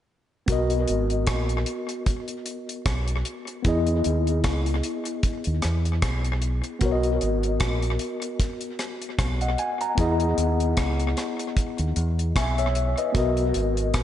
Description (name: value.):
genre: lovers rock reggae.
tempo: 76 BPM.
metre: 4/4.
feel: swing 56% on 16ths.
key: B major.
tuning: A4 = 440 Hz.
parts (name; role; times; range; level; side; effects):
mellow tine electric piano; accompaniment; 0.5-14.0 s; B3 to A#5; -26 LUFS; left 2 dB; medium stereo tremolo, tape echo.
deep dub fingered electric bass; bass; 0.5-14.0 s; G#1 to E2; -25 LUFS; equal; none.
deep reggae drum kit; drums; 0.5-14.0 s; hi-hat, kick drum, rim click; -27 LUFS; equal; gated reverb, tape echo.
room: light reverb, small room ambience.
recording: nothing above 10.9 kHz.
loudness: -22 LUFS.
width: side -11 dB against mid.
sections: 0.5-14.0 A section.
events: none.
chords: 0.5 Bmaj7; 3.6 Emaj7; 6.8 Bmaj7; 10.0 Emaj7; 13.1 Bmaj7.